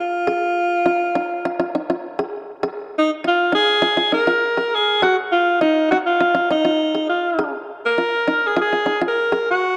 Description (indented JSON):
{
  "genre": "afrobeat",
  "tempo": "101 BPM",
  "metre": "4/4",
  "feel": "straight",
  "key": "unclear",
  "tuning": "A4 = 440 Hz",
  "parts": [
    { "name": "clear alto saxophone", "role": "melody", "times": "0.0-9.8 s", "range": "Eb4 to Bb4", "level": "-19 LUFS", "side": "equal", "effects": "none" },
    { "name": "open-back banjo", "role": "arpeggios", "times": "0.3-9.5 s", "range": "Eb4 to Ab4", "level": "-27 LUFS", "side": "equal", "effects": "none" }
  ],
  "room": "wet spring reverb, RT60 2.4 s",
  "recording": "none",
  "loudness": "-19 LUFS",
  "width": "mono",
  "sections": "0.0-9.8 A section",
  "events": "none",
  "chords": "0.0 Ebsus24"
}